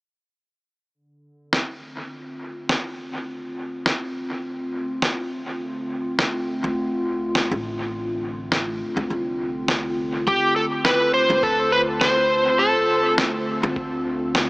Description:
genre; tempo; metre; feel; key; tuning
ambient dub; 103 BPM; 4/4; swing 54% on 16ths; D minor; A4 = 439 Hz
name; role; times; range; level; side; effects
warbly tape-like pad; sustained chords; 0.9-14.5 s; D3 to F4; -27 LUFS; equal; chorus, built-in reverb
electronic snare drum; drums; 1.5-14.5 s; none; -25 LUFS; equal; dub echo
upright bass; bass; 6.6-14.5 s; A1 to D2; -33 LUFS; equal; none
overdriven slide guitar; melody; 10.3-13.1 s; G4 to C5; -18 LUFS; equal; dub echo
electronic kick drum; drums; 11.4-13.9 s; none; -34 LUFS; equal; none
room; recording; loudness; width
moderate huge ambient reverb, RT60 5.1 s; small speaker sound; -20 LUFS; side -25 dB against mid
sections
0.9-10.3 A section; 10.3-14.5 B section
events
none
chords
0.9 Dm7

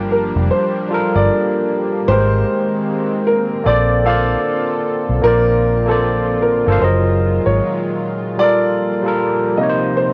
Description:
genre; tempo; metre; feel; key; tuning
lo-fi hip hop; 76 BPM; 4/4; swing 64% on 16ths; Bb major; A4 = 440 Hz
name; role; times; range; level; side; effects
warm upright piano; melody; 0.0-10.1 s; A4 to F5; -21 LUFS; equal; low-pass filter
barky tine electric piano; accompaniment; 0.0-10.1 s; C3 to F5; -20 LUFS; equal; cassette tape, low-pass filter
lush unison pad; sustained chords; 0.0-10.1 s; Bb2 to A4; -26 LUFS; equal; chorus, low-pass filter, cassette tape
vintage muted fingered electric bass; bass; 0.0-7.6 s; F1 to Cb2; -20 LUFS; equal; none
room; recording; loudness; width
moderate studio reverb, RT60 0.6 s; home recording on cassette; -16 LUFS; mono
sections
0.0-5.2 A section; 5.2-10.1 B section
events
none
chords
0.0 Gm9; 2.1 Abmaj9; 3.7 Bbmaj9; 6.8 Gbmaj13; 8.4 Gm9; 9.6 Cm7

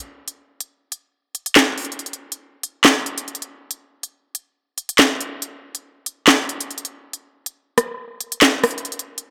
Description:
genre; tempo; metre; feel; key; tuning
hip hop; 140 BPM; 4/4; half-time; none; none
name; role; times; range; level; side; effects
drill drum kit; drums; 0.3-9.3 s; handclaps, hi-hat, rim click, snare drum; -18 LUFS; equal; none
room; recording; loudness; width
moderate spring reverb, RT60 1.9 s, digital ambience; none; -19 LUFS; mono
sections
0.0-9.3 A section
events
kick muted 0.3-2.0, 2.0-8.8; break 8.8-9.3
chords
none

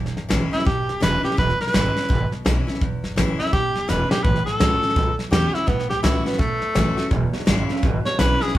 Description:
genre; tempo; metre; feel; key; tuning
rockabilly; 168 BPM; 4/4; swing 62% on 8ths; E major; A4 = 439 Hz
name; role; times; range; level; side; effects
picked steel-string acoustic guitar; accompaniment; 0.0-8.6 s; E2 to F#4; -27 LUFS; left 2 dB; none
upright bass; bass; 0.0-8.6 s; E1 to E2; -24 LUFS; equal; none
soft brush drum kit; drums; 0.1-8.6 s; hi-hat, kick drum, snare drum; -23 LUFS; equal; none
breathy tenor saxophone; melody; 0.5-8.6 s; A3 to C#5; -23 LUFS; equal; none
electric guitar through a small old amp; riff; 7.1-8.6 s; E2 to C#3; -28 LUFS; right 3 dB; phaser
room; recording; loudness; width
moderate large studio reverb, RT60 0.8 s; band playing live in one room; -18 LUFS; side -14 dB against mid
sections
0.0-8.6 A section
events
tenor saxophone solo 0.0-8.6; drum fill 3.9-4.2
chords
0.0 E6; 4.2 A6; 7.1 E6

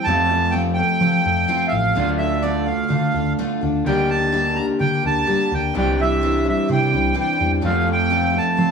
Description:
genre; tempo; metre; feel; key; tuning
rock; 127 BPM; 4/4; straight; unclear; A4 = 440 Hz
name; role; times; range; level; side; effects
accordion; melody; 0.0-8.7 s; D5 to Bb5; -21 LUFS; right 2 dB; none
picked steel-string acoustic guitar; accompaniment; 0.0-8.7 s; C3 to C5; -24 LUFS; left 3 dB; none
electric guitar at the edge of break-up; riff; 0.0-8.7 s; F2 to G4; -22 LUFS; right 1 dB; none
hollow-body short-scale picked electric bass; bass; 0.1-8.7 s; A1 to F3; -24 LUFS; equal; none
room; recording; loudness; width
moderate large studio reverb, RT60 1.0 s; band playing live in one room, studio reverb; -17 LUFS; side -6 dB against mid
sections
0.1-8.7 A section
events
none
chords
0.1 F; 2.0 Dm; 3.9 Gm/D; 5.7 Cadd9; 7.6 F

